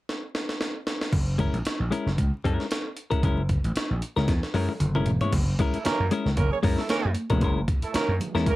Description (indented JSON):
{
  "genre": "funk",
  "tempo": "114 BPM",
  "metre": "4/4",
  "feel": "swing 56% on 16ths",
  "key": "F# mixolydian",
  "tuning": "A4 = 440 Hz",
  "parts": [
    { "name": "breakbeat sampler-style drum kit", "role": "drums", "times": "0.1-8.6 s", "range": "crash cymbal, hi-hat, kick drum, snare drum, toms", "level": "-27 LUFS", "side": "equal", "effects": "none" },
    { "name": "vintage slap bass", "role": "bass", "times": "1.1-8.4 s", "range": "E1 to F#2", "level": "-26 LUFS", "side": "equal", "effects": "none" },
    { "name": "clean electric guitar", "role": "accompaniment", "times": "1.4-8.5 s", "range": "G#3 to C#5", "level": "-27 LUFS", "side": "left 4 dB", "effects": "none" },
    { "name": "congas", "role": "percussion", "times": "5.3-8.6 s", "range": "none", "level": "-34 LUFS", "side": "right 2 dB", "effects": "none" },
    { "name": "mellow horn section", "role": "second line", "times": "5.7-8.6 s", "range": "E3 to C#5", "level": "-28 LUFS", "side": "right 4 dB", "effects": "none" }
  ],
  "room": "light reverb",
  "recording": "vinyl crackle",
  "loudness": "-23 LUFS",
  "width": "side -17 dB against mid",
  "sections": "0.0-1.1 A section; 1.1-5.3 B section; 5.3-8.6 C section",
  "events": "drum fill 0.1-1.1, 4.3-5.3",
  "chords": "0.0 N.C.; 1.1 F#9",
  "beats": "0.08 0.60 | 1.13 1.65 2.18 2.70 | 3.23 3.75 4.28 4.80 | 5.33 5.85 6.37 6.89 | 7.42 7.94 8.46"
}